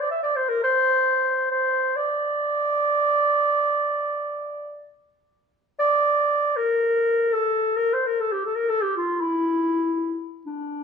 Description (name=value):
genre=Turkish makam ensemble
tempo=free time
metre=none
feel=none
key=D makam nihavent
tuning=A4 = 438 Hz
part: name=mellow clarinet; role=solo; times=0.0-10.8 s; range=D4 to E5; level=-20 LUFS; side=equal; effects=none
room=moderate recital hall reverb, RT60 1.4 s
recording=minimal, uncompressed stereo recording, lossy compression artefacts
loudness=-20 LUFS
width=side -6 dB against mid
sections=0.0-10.8 A section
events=none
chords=none